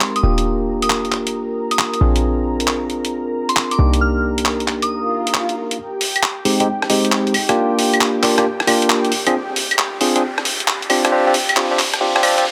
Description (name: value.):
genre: UK garage, two-step garage.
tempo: 135 BPM.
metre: 4/4.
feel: swing 67% on 16ths.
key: unclear.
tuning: A4 = 439 Hz.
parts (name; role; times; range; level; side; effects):
soft synth bell; melody; 0.0-5.4 s; C6 to F6; -26 LUFS; equal; chorus, dub echo.
warm analog pad; sustained chords; 0.0-12.5 s; G4 to Bb5; -30 LUFS; equal; chorus.
barky tine electric piano; stabs; 0.0-12.4 s; Ab3 to Ab4; -21 LUFS; equal; low-pass filter, dub echo.
short 808-style bass; bass; 0.0-5.5 s; Eb1 to C2; -21 LUFS; equal; tube saturation.
boom bap sampler-style drum kit; drums; 0.0-12.4 s; claves, handclaps, hi-hat, rim click; -20 LUFS; equal; high-pass filter on hats, high-pass filter on snare, high-pass filter on perc.
swell, riser and reverse cymbal; sound effects; 5.0-12.5 s; none; -30 LUFS; equal; none.
room: moderate plate reverb, RT60 2.2 s.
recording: high-pass filter.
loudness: -17 LUFS.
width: mono.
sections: 0.0-5.8 A section; 5.8-12.5 B section.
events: filter sweep on tine electric piano 0.0-5.8, 5.8-12.5; filter sweep on analog synth pad 0.0-5.8; swell 5.0-5.8; build-up 5.8-12.5; riser 5.8-12.5; reverse cymbal 12.0-12.5.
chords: 0.2 Ebmaj7; 2.0 Bb9; 3.8 Cm7; 5.8 Abmaj7; 7.3 Bb6; 9.1 Csus24; 10.9 C5.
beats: 0.01 | 0.45 0.90 1.34 1.79 | 2.23 2.68 3.12 3.56 | 4.01 4.45 4.90 5.34 | 5.79 6.23 6.68 7.12 | 7.56 8.01 8.45 8.90 | 9.34 9.79 10.23 10.68 | 11.12 11.56 12.01 12.45.